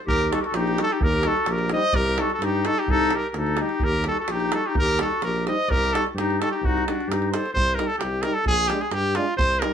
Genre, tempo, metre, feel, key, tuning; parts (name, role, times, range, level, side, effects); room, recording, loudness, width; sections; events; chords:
balkan folk, Balkan brass band; 129 BPM; 2/4; straight; C dorian sharp4; A4 = 440 Hz
clear trumpet; melody; 0.1-9.7 s; F4 to Eb5; -24 LUFS; equal
clear clarinet; second line; 0.1-7.5 s; D4 to C5; -27 LUFS; left 2 dB
mellow tuba; bass; 0.1-9.6 s; Bb1 to G2; -28 LUFS; equal
davul; percussion; 0.1-9.7 s; -27 LUFS; right 1 dB
clear trombone; accompaniment; 0.3-9.7 s; G3 to Ab3; -33 LUFS; right 6 dB
warm euphonium; accompaniment; 0.3-9.7 s; D4 to Eb4; -32 LUFS; left 3 dB
moderate studio reverb, RT60 0.5 s; band playing live in one room; -20 LUFS; side -8 dB against mid
0.1-7.5 A section; 7.5-9.7 B section
0.1 Eb; 1.9 Cm; 3.8 Eb; 5.7 Cm; 8.5 Bb7